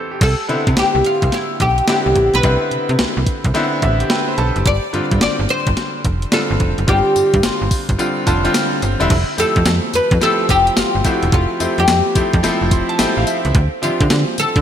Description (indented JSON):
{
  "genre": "R&B, new jack swing",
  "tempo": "108 BPM",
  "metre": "4/4",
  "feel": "swing 65% on 16ths",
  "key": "unclear",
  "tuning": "A4 = 439 Hz",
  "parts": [
    { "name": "bright grand piano", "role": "accompaniment", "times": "0.0-14.6 s", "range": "D3 to C6", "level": "-20 LUFS", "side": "equal", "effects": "none" },
    { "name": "oud", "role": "melody", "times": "0.2-14.6 s", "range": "E4 to D5", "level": "-18 LUFS", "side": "left 1 dB", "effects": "digital delay" },
    { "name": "slap-like FM bass", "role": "bass", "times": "0.2-14.6 s", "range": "E1 to D3", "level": "-18 LUFS", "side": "equal", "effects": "none" },
    { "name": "crisp 8-bit digital drum machine", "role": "drums", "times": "0.2-14.6 s", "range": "crash cymbal, hi-hat, kick drum, snare drum, tambourine", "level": "-19 LUFS", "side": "equal", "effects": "overdrive, gated reverb" }
  ],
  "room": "moderate lush hall reverb, RT60 2.4 s",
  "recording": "bright 1980s-style digital production",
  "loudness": "-14 LUFS",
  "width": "side -9 dB against mid",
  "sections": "0.2-9.1 A section; 9.1-14.6 B section",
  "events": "break 0.0; grand piano fill 3.5-4.7, 8.0-9.1, 12.4-13.5",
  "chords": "0.2 Cmaj9; 4.7 G7sus4; 9.1 Fmaj9; 13.5 Dm11"
}